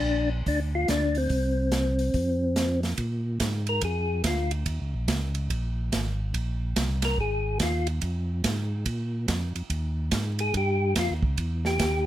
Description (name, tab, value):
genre	soul jazz organ trio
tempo	143 BPM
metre	4/4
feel	swing 64% on 8ths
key	Bb mixolydian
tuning	A4 = 440 Hz
part	percussive tonewheel organ	melody	0.0-4.5, 7.0-7.9, 10.4-12.0 s	C4 to Bb4	-26 LUFS	left 2 dB	slow rotary speaker
part	tonewheel organ	bass	0.0-12.1 s	Ab1 to Bb2	-28 LUFS	equal	chorus vibrato, stopped rotary speaker
part	open jazz drum kit	drums	0.5-11.9 s	hi-hat, kick drum, ride cymbal, snare drum	-30 LUFS	right 2 dB	none
room	little or no reverb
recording	none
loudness	-24 LUFS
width	side -13 dB against mid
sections	0.0-3.0 A section; 3.0-12.1 B section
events	tonewheel organ solo 3.0-12.1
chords	0.0 Bb; 1.3 N.C.; 2.1 F5; 3.0 Bb7; 4.7 Eb5; 6.3 Bbsus2; 8.0 Fm; 8.9 Bb5; 9.7 Eb9; 11.4 Em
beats	0.05 0.47 0.89 | 1.31 1.73 2.15 2.56 | 2.98 3.40 3.82 4.24 | 4.66 5.08 5.50 5.92 | 6.34 6.76 7.18 7.60 | 8.02 8.44 8.86 9.28 | 9.70 10.12 10.54 10.96 | 11.38 11.80